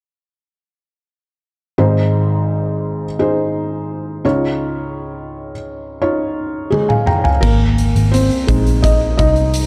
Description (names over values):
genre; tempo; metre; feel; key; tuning
piano-driven pop; 85 BPM; 4/4; straight; Ab major; A4 = 440 Hz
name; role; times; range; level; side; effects
felt-muted upright piano; accompaniment; 1.8-9.7 s; Ab1 to Bb5; -19 LUFS; equal; none
huge arena drum kit; drums; 6.7-9.7 s; crash cymbal, hi-hat, kick drum, toms; -20 LUFS; equal; none
vintage muted picked electric bass; bass; 7.4-9.7 s; Ab1 to C2; -17 LUFS; equal; none
room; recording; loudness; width
light reverb, small room ambience; dark, warm production; -16 LUFS; mono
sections
1.8-7.4 A section; 7.4-9.7 B section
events
drum fill 6.7-7.4; felt piano solo 7.4-9.7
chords
1.8 Ab; 4.2 Dbadd9; 7.4 Ab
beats
| 1.77 2.48 3.19 3.90 | 4.60 5.31 6.01 6.72 | 7.43 8.13 8.84 9.55